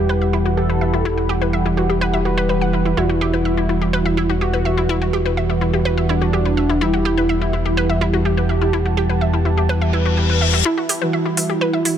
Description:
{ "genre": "melodic techno", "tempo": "125 BPM", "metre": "4/4", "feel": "straight", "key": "E minor", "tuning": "A4 = 440 Hz", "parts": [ { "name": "fat analog lead", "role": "melody", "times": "0.0-12.0 s", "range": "D4 to B4", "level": "-23 LUFS", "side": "right 1 dB", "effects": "analog chorus, ping-pong delay" }, { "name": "deep dark ambient pad", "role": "sustained chords", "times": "0.0-12.0 s", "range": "E3 to B5", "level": "-27 LUFS", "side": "right 2 dB", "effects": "chorus, built-in reverb" }, { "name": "analog synth brass", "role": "stabs", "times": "0.0-12.0 s", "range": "E3 to G4", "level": "-22 LUFS", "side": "right 3 dB", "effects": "chorus, ping-pong delay" }, { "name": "fat analog bass", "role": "bass", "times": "0.0-10.6 s", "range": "E1", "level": "-20 LUFS", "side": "left 1 dB", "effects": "none" }, { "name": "analog pluck", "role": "arpeggios", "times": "0.1-11.9 s", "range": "E4 to F#5", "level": "-23 LUFS", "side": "left 1 dB", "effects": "chorus, ping-pong delay" }, { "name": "reverse cymbal", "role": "sound effects", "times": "9.9-10.7 s", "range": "none", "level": "-22 LUFS", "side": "left 7 dB", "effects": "none" }, { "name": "electronic hi-hat", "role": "drums", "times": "10.9-11.9 s", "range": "none", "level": "-20 LUFS", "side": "equal", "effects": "overdrive" } ], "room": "little or no reverb", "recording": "none", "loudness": "-16 LUFS", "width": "side -9 dB against mid", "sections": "0.0-10.7 A section; 10.7-12.0 B section", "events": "reverse cymbal 9.9-10.7; build-up 10.7-12.0; filter sweep 10.7-12.0", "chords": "0.0 Emadd9", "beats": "0.09 0.57 | 1.05 1.53 2.01 2.49 | 2.97 3.45 3.93 4.41 | 4.89 5.37 5.85 6.33 | 6.81 7.29 7.77 8.25 | 8.73 9.21 9.69 10.17 | 10.65 11.13 11.61" }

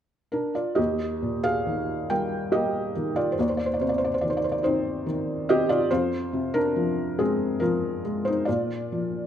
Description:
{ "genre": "classical, lyrical solo piano", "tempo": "70 BPM", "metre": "3/4", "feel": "rubato", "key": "Eb major", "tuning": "A4 = 443 Hz", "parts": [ { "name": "felt-muted upright piano", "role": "solo", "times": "0.3-9.3 s", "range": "Eb2 to G5", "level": "-23 LUFS", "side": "equal", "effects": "none" } ], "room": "moderate recital hall reverb, RT60 1.4 s", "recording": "none", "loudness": "-23 LUFS", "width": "side -9 dB against mid", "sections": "0.8-9.3 A section", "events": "none", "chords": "0.0 Dm; 0.8 Eb; 3.4 Ebmaj13; 5.9 Fm; 8.5 Bb", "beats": "| 0.77 1.66 2.53 | 3.38 4.22 5.07 | 5.90 6.75 7.60 | 8.47" }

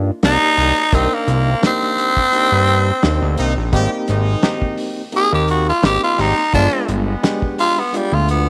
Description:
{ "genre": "straight-eighth soul blues", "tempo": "86 BPM", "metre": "4/4", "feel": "swing 54% on 16ths", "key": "C minor", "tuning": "A4 = 435 Hz", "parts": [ { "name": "overdriven reed electric piano", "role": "accompaniment", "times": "0.0-8.5 s", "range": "Ab3 to D5", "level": "-26 LUFS", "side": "equal", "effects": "fast tremolo" }, { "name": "fat analog bass", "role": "bass", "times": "0.0-8.5 s", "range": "G1 to G2", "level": "-19 LUFS", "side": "equal", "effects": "none" }, { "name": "cloth-damped thuddy drum kit", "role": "drums", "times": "0.2-8.5 s", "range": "hi-hat, kick drum, snare drum", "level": "-23 LUFS", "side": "equal", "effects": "none" }, { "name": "raspy tenor saxophone", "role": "melody", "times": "0.3-8.5 s", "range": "G3 to Ab4", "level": "-18 LUFS", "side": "equal", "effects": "none" }, { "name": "brilliant horn section", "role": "sustained chords", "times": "0.6-7.6 s", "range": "Eb3 to G4", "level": "-28 LUFS", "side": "equal", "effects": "none" } ], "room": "light reverb, small room ambience", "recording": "none", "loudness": "-16 LUFS", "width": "mono", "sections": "0.0-8.5 A section", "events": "tenor saxophone solo 0.0-8.5", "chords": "0.0 Cm7; 3.7 Abmaj7; 6.5 G7b9", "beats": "0.23 | 0.93 1.63 2.33 3.03 | 3.73 4.43 5.13 5.83 | 6.53 7.24 7.93" }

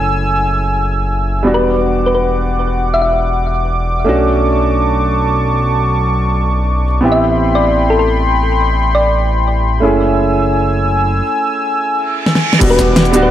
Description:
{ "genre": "liquid drum and bass", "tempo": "free time", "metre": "none", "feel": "none", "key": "E dorian", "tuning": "A4 = 444 Hz", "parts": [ { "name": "warm grand piano", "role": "accompaniment", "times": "0.0-13.3 s", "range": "G3 to G#4", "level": "-17 LUFS", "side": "right 2 dB", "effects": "low-pass filter, dub echo" }, { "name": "warm analog pad", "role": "sustained chords", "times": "0.0-13.3 s", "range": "F#5 to E6", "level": "-18 LUFS", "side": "left 1 dB", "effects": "chorus, sidechain pumping" }, { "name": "smooth gliding synth bass", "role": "bass", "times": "0.0-13.3 s", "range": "D1 to B1", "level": "-16 LUFS", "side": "equal", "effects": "none" }, { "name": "thumb-piano-like synth pluck", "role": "melody", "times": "1.5-3.1, 7.1-9.3, 12.7-13.3 s", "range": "A4 to E5", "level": "-17 LUFS", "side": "left 1 dB", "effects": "chorus, ping-pong delay" }, { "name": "reverse cymbal and downlifter", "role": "sound effects", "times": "12.1-13.3 s", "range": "none", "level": "-20 LUFS", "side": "right 4 dB", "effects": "none" }, { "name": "pop drum kit", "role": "drums", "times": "12.3-13.2 s", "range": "crash cymbal, hi-hat, shaker, snare drum", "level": "-14 LUFS", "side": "equal", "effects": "none" }, { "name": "electronic kick drum", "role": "drums", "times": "12.6-12.9 s", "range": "none", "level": "-16 LUFS", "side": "equal", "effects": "none" } ], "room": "light reverb, digital ambience", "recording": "none", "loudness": "-11 LUFS", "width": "side -11 dB against mid", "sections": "0.0-12.6 A section", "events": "reverse cymbal 12.1-12.6; drum fill 12.3-12.6", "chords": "0.0 F#m9; 1.4 Em9; 4.1 Bm9; 7.0 Am9; 9.8 F#m9; 12.6 Em9", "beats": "free time" }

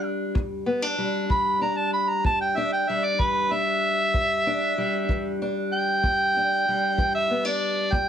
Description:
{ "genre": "acoustic country blues, solo or duo", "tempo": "64 BPM (dotted quarters)", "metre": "12/8", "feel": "straight", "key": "E minor", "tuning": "A4 = 440 Hz", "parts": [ { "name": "mellow harmonica", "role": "melody", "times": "0.0-8.1 s", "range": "B4 to B5", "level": "-22 LUFS", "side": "right 1 dB", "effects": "none" }, { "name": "fingerpicked steel-string acoustic guitar", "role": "accompaniment", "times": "0.0-8.1 s", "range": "E2 to D4", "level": "-27 LUFS", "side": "left 1 dB", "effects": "none" }, { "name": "kick drum", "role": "drums", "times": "0.4-8.1 s", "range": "none", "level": "-27 LUFS", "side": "equal", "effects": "none" } ], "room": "moderate small room reverb, RT60 0.5 s", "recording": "heavily compressed radio sound, multiband compression", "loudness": "-21 LUFS", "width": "side -9 dB against mid", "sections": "0.0-8.1 A section", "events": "harmonica solo 0.0-8.1", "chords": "0.0 Em7", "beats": "| 0.36 1.31 2.26 3.20 | 4.15 5.09 6.04 6.98 | 7.92" }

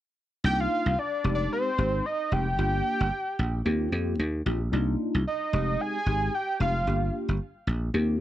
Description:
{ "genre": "funk", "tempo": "112 BPM", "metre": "4/4", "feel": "swing 56% on 16ths", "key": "C minor", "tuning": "A4 = 435 Hz", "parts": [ { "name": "mellow tine electric piano", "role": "accompaniment", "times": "0.4-8.2 s", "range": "Ab3 to G4", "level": "-30 LUFS", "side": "left 1 dB", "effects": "analog chorus" }, { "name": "dry thumbed slap bass", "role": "bass", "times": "0.4-8.2 s", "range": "F1 to F2", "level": "-26 LUFS", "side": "equal", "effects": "none" }, { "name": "fat analog lead", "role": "melody", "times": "0.5-7.1 s", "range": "C5 to Ab5", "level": "-28 LUFS", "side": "right 1 dB", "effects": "chorus" } ], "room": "light reverb", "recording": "none", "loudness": "-25 LUFS", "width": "side -13 dB against mid", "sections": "0.4-8.2 A section", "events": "none", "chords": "0.4 Cm11; 1.2 Fm7; 2.6 Gm7; 3.7 Eb69; 4.7 Cm11; 5.5 Fm7; 6.9 Gm7", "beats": "| 0.44 0.98 1.51 2.05 | 2.58 3.12 3.65 4.19 | 4.73 5.26 5.80 6.33 | 6.87 7.40 7.94" }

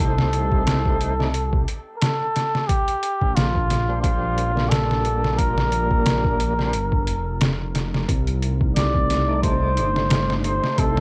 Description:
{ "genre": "trip hop", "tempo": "89 BPM", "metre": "4/4", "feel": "swing 55% on 16ths", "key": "C dorian", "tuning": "A4 = 439 Hz", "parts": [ { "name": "trumpet with cup mute", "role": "melody", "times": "0.0-11.0 s", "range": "F4 to D5", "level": "-27 LUFS", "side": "equal", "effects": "cassette tape, tape echo" }, { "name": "tonewheel organ", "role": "accompaniment", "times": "0.0-11.0 s", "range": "Bb2 to D5", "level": "-32 LUFS", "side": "equal", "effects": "overdrive, slow rotary speaker, tremolo, cassette tape" }, { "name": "dark detuned saw bass", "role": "bass", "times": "0.0-11.0 s", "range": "F1 to C2", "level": "-26 LUFS", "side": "equal", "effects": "transformer saturation" }, { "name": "trip hop sampler-style drum kit", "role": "drums", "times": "0.2-11.0 s", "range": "hi-hat, kick drum, snare drum", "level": "-25 LUFS", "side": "equal", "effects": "none" }, { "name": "warbly tape-like pad", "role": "sustained chords", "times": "8.6-11.0 s", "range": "C3 to D5", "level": "-32 LUFS", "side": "equal", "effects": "chorus, built-in reverb, cassette tape" } ], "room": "light reverb", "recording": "home recording on cassette", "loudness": "-21 LUFS", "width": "mono", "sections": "0.0-11.0 A section", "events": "none", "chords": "0.0 Cm6; 2.7 Bb69; 8.1 Cm69", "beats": "| 0.00 0.67 1.34 2.02 | 2.69 3.37 4.04 4.71 | 5.39 6.06 6.74 7.41 | 8.09 8.76 9.43 10.11 | 10.78" }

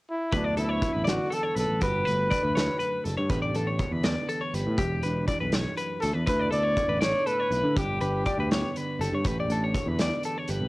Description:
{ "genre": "math rock and midwest emo", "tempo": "81 BPM (dotted quarters)", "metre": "6/8", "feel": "straight", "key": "D major", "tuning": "A4 = 440 Hz", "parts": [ { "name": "warm trumpet", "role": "melody", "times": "0.1-3.0, 6.0-8.7 s", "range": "D4 to D5", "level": "-28 LUFS", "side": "equal", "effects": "cassette tape" }, { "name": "mellow electric guitar", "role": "accompaniment", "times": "0.3-10.7 s", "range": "D2 to G4", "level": "-35 LUFS", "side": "right 3 dB", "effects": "none" }, { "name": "twelve-string electric guitar", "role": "arpeggios", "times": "0.3-10.7 s", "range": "G4 to D5", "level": "-31 LUFS", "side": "left 2 dB", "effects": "none" }, { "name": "overdriven picked electric bass", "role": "bass", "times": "0.3-10.7 s", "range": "E1 to D3", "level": "-29 LUFS", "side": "equal", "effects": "none" }, { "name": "loose indie drum kit", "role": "drums", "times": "0.3-10.6 s", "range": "hi-hat, kick drum, snare drum", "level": "-31 LUFS", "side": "equal", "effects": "none" } ], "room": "studio reverb", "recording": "home recording on cassette", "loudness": "-24 LUFS", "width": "side -20 dB against mid", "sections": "0.3-10.7 A section", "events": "none", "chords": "0.3 D69; 1.8 Gmaj9; 3.3 A9sus4; 4.8 Em9; 6.3 Dsus2; 7.8 G; 9.3 A9sus4", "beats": "| 0.33 1.07 | 1.81 2.56 | 3.30 4.04 | 4.79 5.53 | 6.28 7.02 | 7.77 8.51 | 9.26 10.00" }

